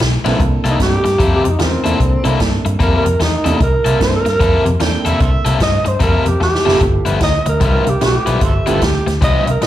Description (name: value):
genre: electric blues shuffle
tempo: 150 BPM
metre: 4/4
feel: swing 63% on 8ths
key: C mixolydian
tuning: A4 = 438 Hz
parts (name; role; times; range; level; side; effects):
- cranked stack guitar; riff; 0.0-9.7 s; G2 to A4; -19 LUFS; left 5 dB; overdrive, slapback echo
- vintage muted fingered electric bass; bass; 0.0-9.7 s; F#1 to G2; -17 LUFS; equal; none
- swinging big-band drum kit; drums; 0.0-9.7 s; hi-hat, kick drum, ride cymbal, snare drum; -18 LUFS; equal; none
- warm upright piano; accompaniment; 0.2-8.8 s; A3 to Bb4; -22 LUFS; right 5 dB; plate reverb, slapback echo
- growling tenor saxophone; melody; 0.7-9.7 s; C4 to Eb5; -18 LUFS; right 1 dB; plate reverb, slapback echo, analog delay
- overdriven harmonica; second line; 4.8-5.5, 8.4-9.1 s; G4 to G5; -24 LUFS; right 4 dB; plate reverb, slapback echo
room: light reverb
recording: live gig heard through the venue's PA, club reverb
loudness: -12 LUFS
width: side -13 dB against mid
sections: 0.4-9.7 A section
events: drum fill 6.4-6.8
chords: 0.4 C13; 6.8 G13